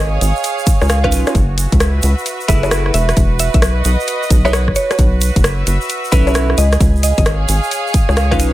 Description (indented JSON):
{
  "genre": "UK garage, two-step garage",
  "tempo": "132 BPM",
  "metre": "4/4",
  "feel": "swing 65% on 16ths",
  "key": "unclear",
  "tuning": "A4 = 439 Hz",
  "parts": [
    { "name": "rubbery square bass", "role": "bass", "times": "0.0-8.5 s", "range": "E1 to C#2", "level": "-15 LUFS", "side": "equal", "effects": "none" },
    { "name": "warm studio string section", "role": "texture", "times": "0.0-8.5 s", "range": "F#4 to E#5", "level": "-22 LUFS", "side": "right 2 dB", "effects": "sidechain pumping" },
    { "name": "house drum kit", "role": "drums", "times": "0.2-8.5 s", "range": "bongos, hi-hat, rim click", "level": "-19 LUFS", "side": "left 1 dB", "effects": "none" },
    { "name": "egg shaker", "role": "percussion", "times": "0.2-8.5 s", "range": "none", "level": "-26 LUFS", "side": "right 5 dB", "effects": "none" },
    { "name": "electronic kick drum", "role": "drums", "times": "0.7-8.4 s", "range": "none", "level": "-14 LUFS", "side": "equal", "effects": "none" },
    { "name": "mallet-like synth pluck", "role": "melody", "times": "0.9-8.4 s", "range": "C#5 to E#5", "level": "-23 LUFS", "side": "right 1 dB", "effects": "chorus, dub echo" },
    { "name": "clean electric guitar", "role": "stabs", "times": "1.0-8.5 s", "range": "C#4 to B4", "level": "-20 LUFS", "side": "right 1 dB", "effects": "analog chorus" }
  ],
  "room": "little or no reverb",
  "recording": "none",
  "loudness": "-12 LUFS",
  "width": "side -15 dB against mid",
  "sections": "0.0-8.5 A section",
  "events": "none",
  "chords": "0.0 C#9; 1.4 F#m11; 2.9 Emaj7(no3); 4.8 B9sus4; 6.6 C#7"
}